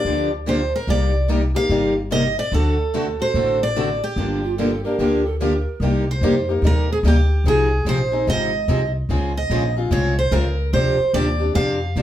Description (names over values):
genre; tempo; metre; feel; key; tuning
acoustic string swing (jazz manouche); 146 BPM; 4/4; swing 64% on 8ths; G minor, C minor from 5.8 s; A4 = 444 Hz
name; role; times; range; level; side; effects
picked steel-string acoustic guitar; melody; 0.0-12.0 s; G4 to F5; -22 LUFS; right 2 dB; none
picked steel-string acoustic guitar; accompaniment; 0.0-12.0 s; C3 to A4; -23 LUFS; left 3 dB; none
upright bass; bass; 0.0-12.0 s; G1 to G2; -21 LUFS; equal; none
picked steel-string acoustic guitar; accompaniment; 0.1-12.0 s; C3 to A4; -26 LUFS; right 1 dB; none
polished pan flute; second line; 4.4-5.8 s; F4 to Bb4; -27 LUFS; right 5 dB; none
room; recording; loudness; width
wet studio reverb, RT60 0.5 s; heard from further back in the room; -17 LUFS; side -12 dB against mid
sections
0.0-5.8 A section; 5.8-12.0 B section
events
none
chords
0.0 Gm7; 0.9 Cm9; 2.5 D7; 4.2 Gm7; 5.8 Cm7; 7.5 Fm7; 9.1 Dbmaj7; 10.7 G7sus4